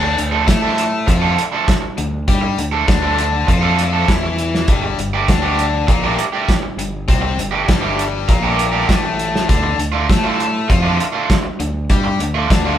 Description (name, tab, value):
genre	indie rock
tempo	100 BPM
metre	4/4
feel	straight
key	D minor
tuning	A4 = 440 Hz
part	biting overdriven guitar	riff	0.0-12.8 s	G2 to A4	-20 LUFS	left 4 dB	none
part	overdriven electric guitar	riff	0.0-12.8 s	D3 to A4	-20 LUFS	right 5 dB	none
part	growling fingered electric bass	bass	0.0-12.8 s	G1 to A2	-21 LUFS	equal	overdrive
part	loose indie drum kit	drums	0.2-12.6 s	hi-hat, kick drum, snare drum	-18 LUFS	equal	none
room	moderate studio reverb, RT60 0.8 s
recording	band playing live in one room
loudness	-14 LUFS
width	side -11 dB against mid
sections	0.0-12.8 A section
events	none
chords	0.0 Dm; 4.7 Gsus2; 9.5 Dm